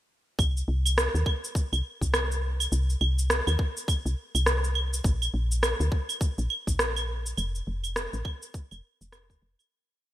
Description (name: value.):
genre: organic downtempo.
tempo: 103 BPM.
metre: 4/4.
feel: swing 59% on 16ths.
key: C dorian.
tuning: A4 = 439 Hz.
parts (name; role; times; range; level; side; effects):
woody FM bass; bass; 0.4-9.6 s; Eb1 to Eb2; -27 LUFS; equal; sidechain pumping.
electronic claves, shaker and rim click; drums; 0.4-9.7 s; none; -29 LUFS; right 1 dB; gated reverb.
electronic kick drum; drums; 0.4-9.4 s; none; -27 LUFS; equal; none.
room: light reverb.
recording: bright 1980s-style digital production.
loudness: -25 LUFS.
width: side -13 dB against mid.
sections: 0.4-9.7 groove.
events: fade-out 6.6-9.7.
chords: none.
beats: | 0.39 0.97 1.55 2.14 | 2.72 3.30 3.88 4.47 | 5.05 5.63 6.21 6.80 | 7.38 7.96 8.54 9.13.